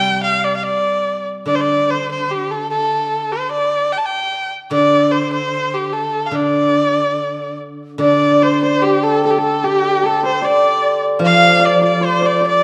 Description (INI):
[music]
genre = chinese traditional, Chinese chamber ensemble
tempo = 74 BPM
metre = 2/4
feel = rubato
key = D yu mode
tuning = A4 = 437 Hz
[part]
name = clear erhu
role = melody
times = 0.0-12.6 s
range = G4 to A5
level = -18 LUFS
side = equal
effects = none
[part]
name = steel-string zither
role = accompaniment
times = 0.0-12.6 s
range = C3 to G3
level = -23 LUFS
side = equal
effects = none
[part]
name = bright reedy large dizi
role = second line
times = 8.0-12.6 s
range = G4 to F5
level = -21 LUFS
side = equal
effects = none
[part]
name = hammered dulcimer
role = second line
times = 8.0-12.6 s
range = G4 to F5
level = -22 LUFS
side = equal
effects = none
[sound]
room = wet recital hall reverb, RT60 1.6 s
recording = dark, warm production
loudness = -16 LUFS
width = mono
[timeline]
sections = 0.0-8.0 A section; 8.0-12.6 B section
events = none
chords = none